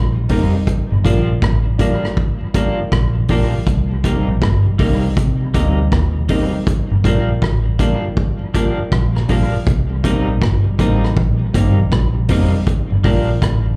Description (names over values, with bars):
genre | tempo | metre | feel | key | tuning
roots reggae | 80 BPM | 4/4 | swing 62% on 16ths | G minor | A4 = 437 Hz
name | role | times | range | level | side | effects
vintage muted fingered electric bass | bass | 0.0-13.8 s | F1 to C3 | -19 LUFS | equal | none
mellow tonewheel organ | accompaniment | 0.2-13.7 s | G2 to F4 | -28 LUFS | equal | dub echo, plate reverb
semi-hollow electric guitar | accompaniment | 0.3-13.3 s | F3 to Eb4 | -26 LUFS | equal | harmonic tremolo, dub echo, plate reverb, slapback echo
warm upright piano | stabs | 0.3-13.3 s | C4 to Bb4 | -28 LUFS | equal | plate reverb, slapback echo
vintage drum kit | drums | 0.3-13.6 s | hi-hat, kick drum, rim click | -21 LUFS | equal | none
room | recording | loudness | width
light reverb | live gig heard through the venue's PA, club reverb | -16 LUFS | mono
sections
0.0-13.8 A section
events
none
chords
0.0 Cm7; 0.7 Gm7; 3.7 Cm7; 6.7 Gm7; 9.7 Cm7; 12.7 Gm7